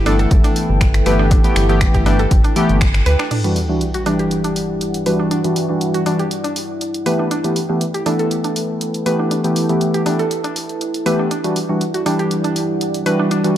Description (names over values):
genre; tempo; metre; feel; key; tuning
deep house; 120 BPM; 4/4; swing 53% on 16ths; E minor; A4 = 441 Hz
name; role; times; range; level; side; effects
deep dark ambient pad; sustained chords; 0.0-13.6 s; G3 to A5; -24 LUFS; equal; chorus, built-in reverb, sidechain pumping
rubbery square bass; bass; 0.0-3.2 s; G1 to D2; -16 LUFS; equal; tube saturation, sidechain pumping
mallet-like synth pluck; arpeggios; 0.1-13.4 s; D4 to B4; -24 LUFS; right 2 dB; chorus, sidechain pumping, analog delay
warm analog keys; stabs; 0.1-13.6 s; E3 to A4; -18 LUFS; equal; chorus, vintage 12-bit sampler grit, sidechain pumping, low-pass filter, analog delay
punchy analog drum machine; drums; 0.1-13.5 s; crash cymbal, finger snaps, hi-hat; -26 LUFS; equal; none
electronic kick drum; drums; 0.3-2.9 s; none; -15 LUFS; equal; none
sub drop; sound effects; 3.3-5.3 s; none; -24 LUFS; equal; none
room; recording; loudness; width
light reverb; none; -15 LUFS; side -11 dB against mid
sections
0.0-3.3 A section; 3.3-13.6 B section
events
band accent 2.8; impact 3.3-5.3; filter sweep on synth arpeggio sound 3.3-13.6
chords
0.0 G69; 3.3 Em9; 7.1 G69; 11.3 Em9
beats
0.31 0.81 | 1.31 1.81 2.31 2.81 | 3.31 3.81 4.31 4.81 | 5.31 5.81 6.31 6.81 | 7.31 7.81 8.31 8.81 | 9.31 9.81 10.31 10.81 | 11.31 11.81 12.31 12.81 | 13.31